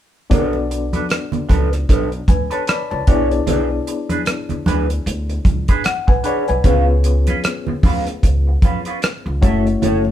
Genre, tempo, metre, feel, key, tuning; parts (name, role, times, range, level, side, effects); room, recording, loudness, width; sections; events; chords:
lush 1970s-style soul; 76 BPM; 4/4; swing 58% on 16ths; B dorian; A4 = 440 Hz
reed electric piano; accompaniment; 0.3-10.1 s; G#3 to B5; -22 LUFS; left 4 dB; overdrive, fast tremolo
electric guitar through a small old amp; riff; 0.3-10.0 s; C#4 to E5; -23 LUFS; right 3 dB; wah
upright bass; bass; 0.3-10.1 s; F#1 to E#2; -20 LUFS; equal
damped 70s drum kit; drums; 0.3-10.0 s; hi-hat, kick drum, rim click; -16 LUFS; equal
congas; percussion; 0.3-10.1 s; -24 LUFS; right 1 dB
moderate studio reverb, RT60 0.6 s; band playing live in one room; -15 LUFS; side -11 dB against mid
0.3-10.1 A section
0.3 Bm7; 3.1 E7/B; 6.6 C#7; 9.4 F#m7